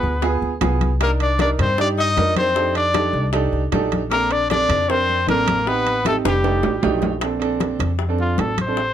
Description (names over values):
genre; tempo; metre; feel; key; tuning
Afro-Cuban jazz; 154 BPM; 4/4; straight; unclear; A4 = 441 Hz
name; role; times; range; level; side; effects
bright trumpet; melody; 0.0-8.9 s; F4 to Eb5; -21 LUFS; left 1 dB; none
breathy tenor saxophone; second line; 0.0-7.0 s; G3 to Eb4; -25 LUFS; left 4 dB; none
warm concert grand piano; accompaniment; 0.0-8.8 s; A3 to Bb4; -24 LUFS; right 5 dB; none
upright bass; bass; 0.0-8.9 s; F1 to G2; -23 LUFS; equal; none
bongos; percussion; 0.0-8.9 s; none; -29 LUFS; left 8 dB; none
congas; percussion; 0.2-8.9 s; none; -27 LUFS; left 3 dB; none
timbales; percussion; 0.2-8.8 s; none; -27 LUFS; right 8 dB; none
room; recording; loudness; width
light reverb; dark, warm production; -17 LUFS; side -10 dB against mid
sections
0.0-7.2 A section; 7.2-8.9 B section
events
drum fill 6.1-7.2; trumpet solo 7.2-8.9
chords
0.0 G7b9 (rootless); 1.0 Cm9; 2.6 F13; 4.1 Bbmaj7; 5.7 Am7b5; 6.4 F13; 7.2 Bbmaj9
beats
0.23 0.62 | 1.01 1.40 1.79 2.18 | 2.56 2.95 3.34 3.73 | 4.12 4.51 4.89 5.28 | 5.67 6.06 6.45 6.84 | 7.22 7.61 8.00 8.39 | 8.78